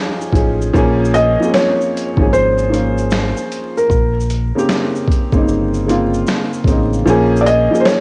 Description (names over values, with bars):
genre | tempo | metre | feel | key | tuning
lo-fi hip hop | 76 BPM | 4/4 | swing 65% on 16ths | Bb dorian | A4 = 440 Hz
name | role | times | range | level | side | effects
warm upright piano | accompaniment | 0.0-8.0 s | Db3 to Ab4 | -19 LUFS | equal | cassette tape
boom bap sampler-style drum kit | drums | 0.2-8.0 s | finger snaps, hi-hat, kick drum, shaker, snare drum | -21 LUFS | equal | cassette tape
deep dub fingered electric bass | bass | 0.3-7.7 s | G1 to Bb1 | -21 LUFS | equal | none
felt-muted upright piano | melody | 1.1-8.0 s | Bb4 to Eb5 | -18 LUFS | equal | cassette tape
room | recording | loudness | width
little or no reverb | home recording on cassette, vinyl crackle, nothing above 10.5 kHz | -15 LUFS | mono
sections
0.0-7.1 A section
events
kick muted 7.1-8.0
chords
0.0 Eb9sus4; 0.7 Bbm7; 3.9 Bbm69; 7.1 Bbm7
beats
| 0.74 1.53 2.32 3.11 | 3.90 4.69 5.48 6.27 | 7.06 7.84